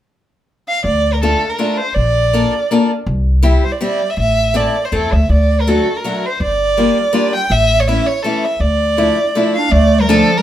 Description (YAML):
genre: musette waltz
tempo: 162 BPM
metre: 3/4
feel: swing 54% on 8ths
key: D minor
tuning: A4 = 440 Hz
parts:
  - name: rich violin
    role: melody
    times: 0.7-10.4 s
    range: A4 to G5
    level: -16 LUFS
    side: right 1 dB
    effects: none
  - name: upright bass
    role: bass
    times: 0.8-10.2 s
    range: G1 to E2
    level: -15 LUFS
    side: equal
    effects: none
  - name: picked steel-string acoustic guitar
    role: accompaniment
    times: 1.2-10.3 s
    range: E3 to A4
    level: -16 LUFS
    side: left 2 dB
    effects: none
  - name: breathy clarinet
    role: second line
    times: 9.6-10.4 s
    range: F3 to D4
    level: -15 LUFS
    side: right 2 dB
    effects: none
room: wet small room reverb, RT60 0.5 s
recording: heard from further back in the room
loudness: -12 LUFS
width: side -11 dB against mid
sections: 0.8-9.7 A section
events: none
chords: 0.0 N.C.; 0.8 Dm; 2.0 Bbmaj7; 3.1 C; 4.2 Am; 5.3 D; 6.4 Gm7; 7.5 A; 8.6 Dmadd9; 9.7 Dm